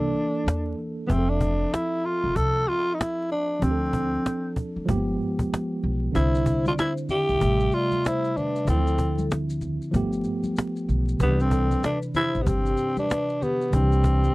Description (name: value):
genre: hip hop, jazz-hop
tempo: 95 BPM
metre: 4/4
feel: swing 62% on 16ths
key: C major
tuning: A4 = 440 Hz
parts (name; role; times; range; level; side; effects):
- growling tenor saxophone; melody; 0.0-14.3 s; B3 to A4; -25 LUFS; equal; none
- tine electric piano; accompaniment; 0.0-14.3 s; C3 to E5; -28 LUFS; right 1 dB; medium stereo tremolo
- upright bass; bass; 0.0-14.3 s; E1 to E2; -25 LUFS; equal; none
- cajon; drums; 0.2-14.2 s; none; -28 LUFS; equal; none
- vibraphone with medium mallets; second line; 6.2-14.3 s; G4 to E5; -32 LUFS; left 3 dB; none
- maracas and congas; percussion; 6.2-14.3 s; none; -36 LUFS; left 2 dB; none
room: little or no reverb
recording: dry, close 1970s-style studio recording, vinyl crackle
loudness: -22 LUFS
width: side -21 dB against mid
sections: 0.0-14.3 A section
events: none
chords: 0.0 C13 (rootless); 1.1 Fmaj7; 3.6 Dm7; 4.9 G7b9; 6.1 Cadd9; 7.4 Am7; 8.7 Dm9; 9.9 G9; 11.2 Cmaj9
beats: 0.46 | 1.09 1.73 2.36 2.99 | 3.62 4.25 4.88 5.51 | 6.15 6.78 7.41 8.04 | 8.67 9.30 9.94 10.57 | 11.20 11.83 12.46 13.09 | 13.73